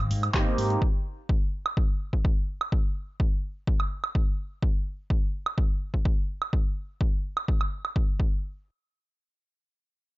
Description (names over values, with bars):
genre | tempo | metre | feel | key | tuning
filtered disco house | 126 BPM | 4/4 | straight | unclear | A4 = 439 Hz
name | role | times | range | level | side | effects
bright concert grand piano | accompaniment | 0.0-0.8 s | Bb3 to G4 | -30 LUFS | right 3 dB | phaser, sidechain pumping, low-pass filter
fingered electric bass | bass | 0.0-0.8 s | Ab1 to Ab2 | -28 LUFS | equal | sidechain pumping, low-pass filter
punchy analog drum machine | drums | 0.1-7.9 s | handclaps, hi-hat, woodblock | -30 LUFS | right 4 dB | sidechain pumping on hats, sidechain pumping on perc
electronic kick drum | drums | 0.3-8.3 s | none | -25 LUFS | equal | none
room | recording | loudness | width
digital ambience | nothing above 7.5 kHz | -25 LUFS | side -20 dB against mid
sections
0.0-8.4 A section; 8.4-10.2 B section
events
none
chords
0.0 Abmaj9; 0.8 N.C.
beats
0.34 | 0.81 1.29 1.77 2.24 | 2.72 3.20 3.67 4.15 | 4.62 5.10 5.58 6.05 | 6.53 7.00 7.48 7.96